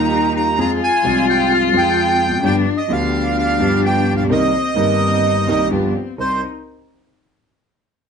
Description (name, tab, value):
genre	tango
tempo	129 BPM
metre	4/4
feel	rubato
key	C minor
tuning	A4 = 439 Hz
part	bandoneon	melody	0.0-6.4 s	C5 to Bb5	-19 LUFS	right 3 dB	none
part	warm cello	second line	0.0-6.4 s	C4 to F4	-20 LUFS	left 5 dB	none
part	clear concert grand piano	accompaniment	0.0-6.4 s	G1 to Bb4	-18 LUFS	right 1 dB	none
part	dark chamber string section	stabs	0.0-6.4 s	B3 to Bb4	-27 LUFS	left 1 dB	none
room	moderate studio reverb, RT60 0.6 s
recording	band playing live in one room, nothing above 10.4 kHz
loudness	-14 LUFS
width	side -6 dB against mid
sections	0.0-6.2 A section; 6.2-8.1 B section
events	none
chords	0.0 Ebadd9; 0.6 Fm; 2.4 G7; 4.3 Cm7; 5.7 G7; 6.2 Cm7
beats	0.12 | 0.59 1.05 1.51 1.98 | 2.44 2.90 3.37 3.83 | 4.30 4.77 5.24 5.71 | 6.19